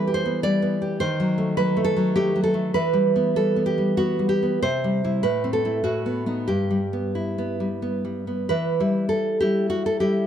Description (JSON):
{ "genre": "romantic piece for solo classical guitar", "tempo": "88-107 BPM", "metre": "3/4", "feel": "rubato", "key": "E minor", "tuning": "A4 = 440 Hz", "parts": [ { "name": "nylon-string guitar", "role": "solo", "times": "0.0-10.3 s", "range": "G2 to D5", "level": "-20 LUFS", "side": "equal", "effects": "none" } ], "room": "light reverb", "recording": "close, detailed microphones", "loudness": "-20 LUFS", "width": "side -9 dB against mid", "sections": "0.0-8.5 A section; 8.5-10.3 A section", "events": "none", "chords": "0.0 Em; 1.0 D#dim7; 2.7 Em; 4.6 C; 5.2 Amadd9; 5.8 B7/A; 6.5 Em/G; 8.5 Em", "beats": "0.44 | 1.01 1.58 2.15 | 2.75 3.36 3.97 | 4.62 5.24 5.84 | 6.49 7.17 7.83 | 8.48 9.11 9.71" }